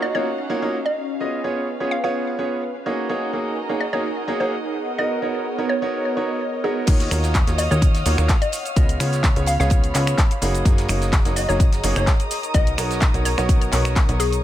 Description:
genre	piano house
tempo	127 BPM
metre	4/4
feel	straight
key	unclear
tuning	A4 = 440 Hz
part	hollow square pluck	melody	0.0-14.4 s	Ab4 to F5	-27 LUFS	left 1 dB	chorus, ping-pong delay
part	muted studio violin section	sustained chords	0.0-14.4 s	B3 to F6	-32 LUFS	right 1 dB	sidechain pumping
part	clear concert grand piano	riff	0.0-14.2 s	Bb3 to Eb5	-25 LUFS	right 2 dB	sidechain pumping, ping-pong delay
part	airy breathy pad	texture	0.0-14.4 s	B3 to Cb6	-30 LUFS	equal	chorus, sidechain pumping
part	plucky analog bass	bass	6.9-14.4 s	Gb1 to Eb2	-22 LUFS	equal	sidechain pumping
part	damped 70s drum kit	drums	6.9-14.4 s	hi-hat, snare drum	-37 LUFS	right 3 dB	none
part	electronic kick drum	drums	6.9-14.1 s	none	-17 LUFS	equal	small room ambience
part	house drum kit	drums	6.9-14.4 s	cabasa, crash cymbal, finger snaps, handclaps, hi-hat	-26 LUFS	equal	small room ambience
room	studio reverb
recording	none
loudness	-18 LUFS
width	side -12 dB against mid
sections	0.0-6.9 A section; 6.9-14.4 B section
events	drop 6.9-14.4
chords	0.0 Ebm9; 1.2 Db7; 2.9 Gb69; 4.7 Bmaj9; 6.9 Ebm9; 8.8 Db7; 10.4 Gb69; 12.3 Bmaj9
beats	0.26 0.73 | 1.21 1.68 2.15 2.62 | 3.10 3.57 4.04 4.51 | 4.99 5.46 5.93 6.40 | 6.88 7.35 7.82 8.29 | 8.77 9.24 9.71 10.18 | 10.65 11.13 11.60 12.07 | 12.54 13.02 13.49 13.96 | 14.43

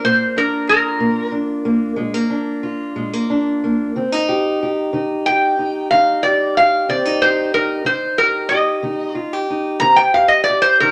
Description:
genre	acoustic country blues, solo or duo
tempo	61 BPM (dotted quarters)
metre	12/8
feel	straight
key	unclear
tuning	A4 = 437 Hz
part	metal-body resonator slide guitar	melody	0.0-10.9 s	Bb4 to Bb5	-16 LUFS	equal	none
part	fingerpicked steel-string acoustic guitar	accompaniment	0.0-10.9 s	Bb2 to G4	-22 LUFS	equal	none
room	moderate studio reverb, RT60 0.9 s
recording	none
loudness	-17 LUFS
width	mono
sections	0.0-10.9 A section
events	resonator guitar played with a steel bar solo 0.0-10.9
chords	0.0 Bb; 3.9 Eb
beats	| 0.03 1.01 1.99 2.97 | 3.94 4.92 5.90 6.88 | 7.86 8.84 9.81 10.79

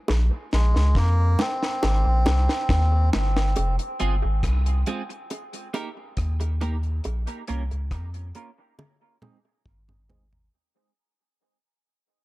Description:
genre	dub reggae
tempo	69 BPM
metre	4/4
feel	straight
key	unclear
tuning	A4 = 440 Hz
part	warm sub bass	bass	0.1-10.5 s	F1 to F2	-21 LUFS	equal	none
part	deep reggae drum kit	drums	0.1-10.5 s	hi-hat, kick drum, rim click, snare drum, toms	-28 LUFS	left 1 dB	none
part	bongos	percussion	0.1-10.3 s	none	-34 LUFS	right 3 dB	dub echo
part	melodica	melody	0.5-3.1 s	Ab3 to C4	-29 LUFS	equal	dub echo
part	clean electric guitar	accompaniment	4.0-10.2 s	Ab3 to Bb4	-34 LUFS	right 4 dB	lush chorus, low-pass filter, dub echo
room	small room reverb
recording	echo-heavy mix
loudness	-21 LUFS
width	side -19 dB against mid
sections	0.0-3.6 A section; 3.6-10.5 B section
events	break 0.0-3.6; drum fill 0.1-3.6, 8.8-10.5; fade-out 3.6-10.5; filter sweep on clean electric guitar 3.6-10.5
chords	0.1 Bbm; 1.8 Ab; 3.6 Fm; 5.3 Eb; 7.0 Bbm; 8.8 Ab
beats	| 0.09 0.95 1.82 2.69 | 3.56 4.43 5.30 6.17 | 7.04 7.92 8.79 9.66

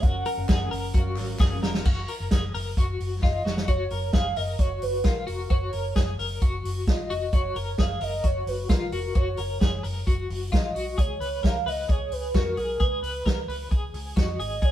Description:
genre	jangly indie pop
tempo	132 BPM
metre	4/4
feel	straight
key	F# major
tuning	A4 = 440 Hz
part	warbly nostalgic lead	melody	0.0-14.7 s	A#4 to F#5	-30 LUFS	right 2 dB	chorus
part	fingerpicked steel-string acoustic guitar	accompaniment	0.0-1.9 s	F#3 to A#4	-35 LUFS	right 1 dB	none
part	twelve-string electric guitar	arpeggios	0.0-14.7 s	E#4 to B4	-33 LUFS	left 4 dB	tremolo
part	vintage muted fingered electric bass	bass	0.0-14.7 s	E#1 to E#2	-32 LUFS	equal	none
part	vintage drum kit	drums	0.0-14.7 s	crash cymbal, hi-hat, kick drum, snare drum	-24 LUFS	equal	none
part	group handclap	percussion	0.5-1.5 s	none	-44 LUFS	left 2 dB	none
room	light reverb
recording	band playing live in one room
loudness	-23 LUFS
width	side -12 dB against mid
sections	0.0-1.9 A section; 1.9-3.7 B section; 3.7-14.7 C section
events	drum fill 1.4-1.9, 3.2-3.7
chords	0.0 F#maj7; 11.0 C#7(no3)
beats	| 0.03 0.48 0.94 1.40 | 1.85 2.31 2.77 3.22 | 3.68 4.13 4.59 5.05 | 5.50 5.96 6.42 6.87 | 7.33 7.79 8.24 8.70 | 9.15 9.61 10.07 10.52 | 10.98 11.44 11.89 12.35 | 12.80 13.26 13.71 14.17 | 14.63

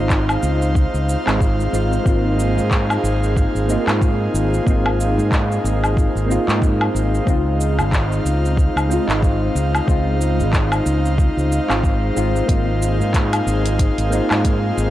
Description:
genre	sunset chillout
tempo	92 BPM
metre	4/4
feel	swing 58% on 16ths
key	Ab major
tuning	A4 = 440 Hz
part	soft electric-piano-like synth keys	accompaniment	0.0-14.9 s	Ab3 to F4	-23 LUFS	equal	chorus, phaser, auto-pan, low-pass filter, analog delay, shimmer reverb
part	airy breathy pad	sustained chords	0.0-14.9 s	Eb4 to F5	-23 LUFS	equal	chorus, shimmer reverb
part	fingered electric bass	bass	0.0-14.9 s	Ab1 to Ab2	-20 LUFS	equal	none
part	deep house drum kit	drums	0.1-14.9 s	cabasa, handclaps, hi-hat, woodblock	-24 LUFS	equal	none
part	electronic kick drum	drums	0.1-14.6 s	none	-18 LUFS	equal	overdrive
room	light reverb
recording	dry, gritty hardware recording, cassette tape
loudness	-16 LUFS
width	side -14 dB against mid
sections	0.0-14.9 A section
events	none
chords	0.0 Dbmaj9; 2.1 Ab6; 7.3 Dbmaj9; 12.5 Ab6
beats	0.10 0.75 1.40 | 2.05 2.71 3.36 4.01 | 4.66 5.32 5.97 6.62 | 7.27 7.92 8.58 9.23 | 9.88 10.53 11.18 11.84 | 12.49 13.14 13.79 14.45

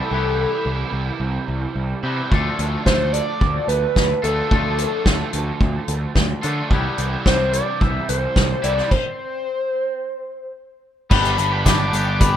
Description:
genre	indie rock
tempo	109 BPM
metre	4/4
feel	straight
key	unclear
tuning	A4 = 440 Hz
part	overdriven synth lead	melody	0.0-12.4 s	A4 to D6	-23 LUFS	equal	phaser, plate reverb, digital delay
part	overdriven electric guitar	riff	0.0-12.4 s	C3 to G4	-27 LUFS	right 7 dB	ensemble chorus
part	twangy electric guitar	riff	0.0-12.4 s	E3 to A4	-29 LUFS	left 6 dB	none
part	fuzz picked electric bass	bass	0.1-12.4 s	G1 to D3	-23 LUFS	equal	overdrive
part	loose indie drum kit	drums	2.3-12.3 s	crash cymbal, hi-hat, kick drum, snare drum	-19 LUFS	equal	none
part	glockenspiel with brass mallets	second line	11.1-12.4 s	B5 to D6	-24 LUFS	left 6 dB	none
part	tambourine	percussion	11.4-12.3 s	none	-39 LUFS	left 4 dB	none
room	light reverb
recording	rough home demo mix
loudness	-18 LUFS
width	side -10 dB against mid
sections	0.0-11.1 A section; 11.1-12.4 B section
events	stop 8.9-11.1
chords	0.0 Cmaj7; 2.3 Dm; 6.7 Cmaj7; 11.1 G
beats	| 0.12 0.67 1.22 1.76 | 2.31 2.86 3.41 3.96 | 4.51 5.05 5.61 6.16 | 6.71 7.25 7.81 8.36 | 8.91 9.46 10.01 10.56 | 11.11 11.66 12.21

